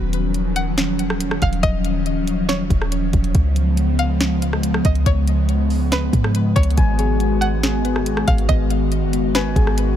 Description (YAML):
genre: hip hop, atmospheric cloud-rap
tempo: 140 BPM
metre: 4/4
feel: half-time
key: Eb minor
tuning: A4 = 445 Hz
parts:
  - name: airy breathy pad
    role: sustained chords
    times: 0.0-10.0 s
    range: Db3 to Gb4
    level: -22 LUFS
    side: left 1 dB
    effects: chorus
  - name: clean 808-style bass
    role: bass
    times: 0.0-10.0 s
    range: Db1 to Ab2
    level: -20 LUFS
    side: equal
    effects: none
  - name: smooth R&B drum kit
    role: drums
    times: 0.1-9.9 s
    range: hi-hat, kick drum, rim click, snare drum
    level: -21 LUFS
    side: equal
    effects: none
  - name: string-like resonator pluck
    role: melody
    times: 0.6-10.0 s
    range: Cb5 to Gb5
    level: -28 LUFS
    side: equal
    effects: chorus, low-pass filter, ping-pong delay
  - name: soft electric-piano-like synth keys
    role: arpeggios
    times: 6.8-10.0 s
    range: Cb4 to Ab5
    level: -26 LUFS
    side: left 7 dB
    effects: chorus, low-pass filter, ping-pong delay
room: digital ambience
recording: none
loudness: -16 LUFS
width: side -10 dB against mid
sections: 0.0-10.0 A section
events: none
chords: 0.0 Ebm9; 3.3 Db7; 6.8 Abm7